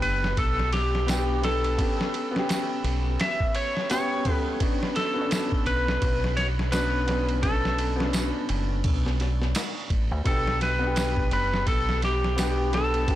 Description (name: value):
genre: trip hop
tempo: 85 BPM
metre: 4/4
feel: swing 59% on 16ths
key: unclear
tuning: A4 = 441 Hz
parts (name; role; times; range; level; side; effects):
- clean lap steel guitar; melody; 0.0-13.2 s; G4 to E5; -28 LUFS; equal; tape echo
- dark upright piano; accompaniment; 0.0-13.2 s; B3 to A4; -30 LUFS; left 1 dB; harmonic tremolo, tape echo
- deep dub fingered electric bass; bass; 0.0-13.1 s; F#1 to D2; -27 LUFS; equal; tube saturation
- boom bap sampler-style drum kit; drums; 0.0-13.2 s; kick drum, ride cymbal, snare drum; -28 LUFS; equal; soft clipping on snare
- tambourine; percussion; 1.1-12.5 s; none; -37 LUFS; right 4 dB; none
room: light reverb, digital ambience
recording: blown-out, overdriven recording, overdrive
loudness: -23 LUFS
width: side -13 dB against mid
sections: 0.0-13.2 A section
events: none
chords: 0.0 G; 1.8 A7/B; 4.6 Bmadd9; 10.3 G